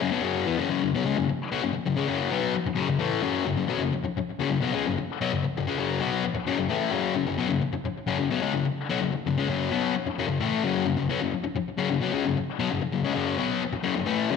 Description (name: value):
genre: rock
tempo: 130 BPM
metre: 4/4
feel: straight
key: F# minor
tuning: A4 = 441 Hz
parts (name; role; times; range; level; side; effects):
- fuzz guitar; solo; 0.0-14.4 s; F#2 to B3; -24 LUFS; left 6 dB; distortion, slapback echo
room: moderate echo chamber reverb, RT60 2.2 s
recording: none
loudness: -24 LUFS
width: side -5 dB against mid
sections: 0.7-14.4 A section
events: none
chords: 0.0 F#5; 0.7 F#m